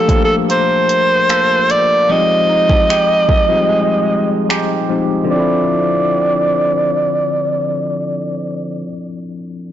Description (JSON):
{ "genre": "contemporary R&B", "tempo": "75 BPM", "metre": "4/4", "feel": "straight", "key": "D minor", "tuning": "A4 = 441 Hz", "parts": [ { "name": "breathy alto saxophone", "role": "melody", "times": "0.0-8.8 s", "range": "A4 to Eb5", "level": "-14 LUFS", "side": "right 1 dB", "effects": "low-pass filter, tape echo" }, { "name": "bell-like tine electric piano", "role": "accompaniment", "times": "0.0-9.7 s", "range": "F3 to A4", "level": "-19 LUFS", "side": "left 4 dB", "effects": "fast stereo tremolo, low-pass filter" }, { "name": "direct-recorded clean electric guitar", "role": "arpeggios", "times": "0.0-9.0 s", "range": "D3 to A4", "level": "-22 LUFS", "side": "right 8 dB", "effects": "wide subtle chorus, low-pass filter, tape echo" }, { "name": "smooth R&B drum kit", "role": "drums", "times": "0.1-4.7 s", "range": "finger snaps, hi-hat, kick drum", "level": "-18 LUFS", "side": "equal", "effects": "overdrive, soft clipping on snare" } ], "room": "light reverb", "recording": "blown-out, overdriven recording, overdrive, nothing above 7.7 kHz", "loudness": "-12 LUFS", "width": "side -11 dB against mid", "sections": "0.0-5.3 A section; 5.3-8.5 B section", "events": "filter sweep 0.0-5.3", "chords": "0.0 Gm9; 2.1 Fm9; 5.3 Dm9", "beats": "0.49 1.29 | 2.09 2.89 3.69 4.49 | 5.29 6.09 6.89 7.69" }